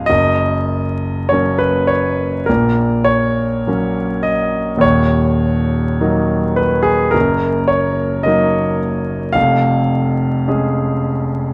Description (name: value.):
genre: classical, romantic nocturne for solo piano.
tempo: 49-55 BPM.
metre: 4/4.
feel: rubato.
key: F# major.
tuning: A4 = 441 Hz.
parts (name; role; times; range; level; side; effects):
warm concert grand piano; solo; 0.0-11.5 s; D#1 to E#5; -16 LUFS; equal; none.
room: moderate recital hall reverb, RT60 1.4 s.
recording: vinyl crackle, nothing above 10.6 kHz.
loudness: -16 LUFS.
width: mono.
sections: 0.0-11.5 A section.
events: none.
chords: 0.1 F#; 2.5 F#/A#; 4.8 D#m; 7.1 D#m/F#; 9.4 C#/E#.